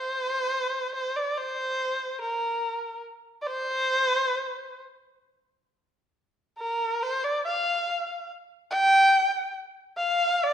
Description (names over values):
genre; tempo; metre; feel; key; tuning
chinese traditional; 70 BPM; 2/4; rubato; C shang mode; A4 = 439 Hz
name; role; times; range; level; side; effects
dark erhu; solo; 0.0-10.5 s; Bb4 to G5; -24 LUFS; equal; none
room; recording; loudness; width
wet recital hall reverb, RT60 1.4 s; minimal, uncompressed stereo recording; -24 LUFS; side -9 dB against mid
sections
0.0-5.3 A section; 5.3-10.5 B section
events
none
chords
none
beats
| 0.08 0.94 | 1.79 2.63 | 3.49 4.37 | 5.26 6.14 | 7.01 7.87 | 8.73 9.58 | 10.44